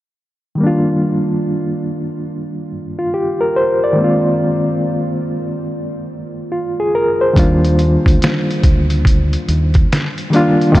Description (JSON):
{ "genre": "lo-fi hip hop", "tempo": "71 BPM", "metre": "4/4", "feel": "swing 64% on 16ths", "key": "Eb major", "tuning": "A4 = 440 Hz", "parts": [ { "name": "bright reed electric piano", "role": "accompaniment", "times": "0.6-10.8 s", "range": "Eb3 to D5", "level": "-15 LUFS", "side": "equal", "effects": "fast tremolo, cassette tape, low-pass filter" }, { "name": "deep dub fingered electric bass", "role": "bass", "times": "7.4-10.8 s", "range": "Ab1 to Eb2", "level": "-15 LUFS", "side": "equal", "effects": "none" }, { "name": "lo-fi sampler-style drum kit", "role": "drums", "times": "7.4-10.8 s", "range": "hi-hat, kick drum, snare drum", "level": "-15 LUFS", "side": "equal", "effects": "none" } ], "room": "moderate huge ambient reverb, RT60 7.2 s", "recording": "dreamy mix soaked in reverb, cassette tape", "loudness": "-13 LUFS", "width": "side -16 dB against mid", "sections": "0.6-7.4 A section; 7.4-10.8 B section", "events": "none", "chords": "0.6 Ebmaj9; 4.0 Ab69; 7.4 Ebmaj9" }